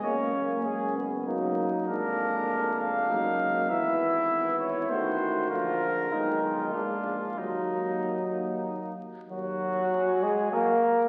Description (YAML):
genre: classical, brass quintet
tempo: 98 BPM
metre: 3/4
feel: rubato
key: Eb minor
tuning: A4 = 440 Hz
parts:
  - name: mellow trumpet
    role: melody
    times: 0.0-11.1 s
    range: Eb4 to F5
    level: -33 LUFS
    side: equal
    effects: none
  - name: mellow trumpet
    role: second line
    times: 0.0-11.1 s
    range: C#4 to Bb4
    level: -34 LUFS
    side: equal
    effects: none
  - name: clear euphonium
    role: accompaniment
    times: 0.0-10.7 s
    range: D3 to A#3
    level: -36 LUFS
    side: equal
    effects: none
  - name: mellow French horn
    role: accompaniment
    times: 0.0-11.1 s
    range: F3 to C#4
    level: -34 LUFS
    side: equal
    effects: none
  - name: clear bass trombone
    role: bass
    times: 0.0-9.8 s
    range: F1 to Eb2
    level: -40 LUFS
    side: equal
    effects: none
room: wet concert hall reverb, RT60 2.0 s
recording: very old 78 rpm record, vinyl crackle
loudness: -28 LUFS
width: mono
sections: 0.0-9.3 A section; 9.3-11.1 B section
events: none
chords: 0.1 F#; 1.9 Bb7/F; 3.1 Ebm/Gb; 3.7 E/G#; 4.9 Adim7; 5.5 Bb; 6.1 Abm/Cb; 6.7 Bb7; 7.4 Ebm